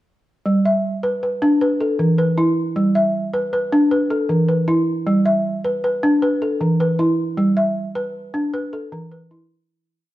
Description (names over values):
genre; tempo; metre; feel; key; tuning
west african traditional, West African string and xylophone music; 104 BPM (dotted quarters); 12/8; straight; G major; A4 = 440 Hz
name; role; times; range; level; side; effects
balafon; solo; 0.5-9.7 s; E3 to E5; -17 LUFS; equal; none
room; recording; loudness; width
moderate recital hall reverb, RT60 1.4 s; dark, warm production; -16 LUFS; side -15 dB against mid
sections
0.5-9.7 A section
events
fade-out 7.4-9.7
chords
0.5 G; 1.6 E5; 2.8 G; 3.9 E5; 5.1 G; 6.2 E5; 7.4 G; 8.5 E5